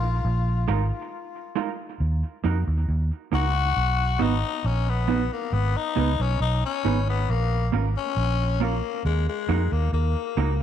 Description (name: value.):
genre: roots reggae.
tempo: 68 BPM.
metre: 4/4.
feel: straight.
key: Eb minor.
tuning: A4 = 440 Hz.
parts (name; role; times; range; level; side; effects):
growling tenor saxophone; melody; 0.0-10.6 s; Ab3 to Gb4; -28 LUFS; left 9 dB; tape echo.
mellow electric guitar; accompaniment; 0.0-10.6 s; Ab3 to B4; -30 LUFS; right 10 dB; tape echo.
vintage muted fingered electric bass; bass; 0.0-10.6 s; Ab1 to F2; -23 LUFS; equal; none.
room: light reverb, studio reverb.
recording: 1960s-style stereo with parts hard left and right.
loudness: -22 LUFS.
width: side -10 dB against mid.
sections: 0.0-2.0 A section; 2.0-10.6 B section.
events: tenor saxophone solo 2.0-10.6.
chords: 0.0 Bb7sus4; 2.0 Ebm; 3.8 B; 5.5 Abm; 7.3 Bbm; 9.0 Ebm.